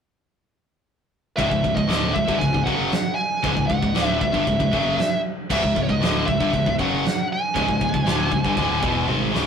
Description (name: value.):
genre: heavy metal.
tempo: 117 BPM.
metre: 4/4.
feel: straight.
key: unclear.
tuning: A4 = 442 Hz.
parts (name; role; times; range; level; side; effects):
high-gain lead guitar; melody; 1.4-9.1 s; C#5 to G#5; -24 LUFS; right 1 dB; distortion.
distorted electric guitar; riff; 1.4-9.5 s; C#2 to G#3; -24 LUFS; left 5 dB; overdrive.
high-gain distorted guitar; riff; 1.4-9.5 s; C#2 to G#3; -26 LUFS; right 7 dB; distortion.
modern bright picked electric bass; bass; 1.4-9.5 s; C#1 to G#1; -29 LUFS; equal; none.
big rock drum kit; drums; 1.4-9.5 s; china cymbal, crash cymbal, kick drum, snare drum, toms; -25 LUFS; right 1 dB; none.
room: moderate studio reverb, RT60 0.5 s.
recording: rough rehearsal-room recording, warm saturation.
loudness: -19 LUFS.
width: side -7 dB against mid.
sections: 1.4-9.5 A section.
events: drum fill 9.1-9.5.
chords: 1.4 C#m.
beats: | 1.39 1.90 2.41 2.92 | 3.44 3.95 4.46 4.98 | 5.49 6.00 6.51 7.03 | 7.54 8.05 8.57 9.08.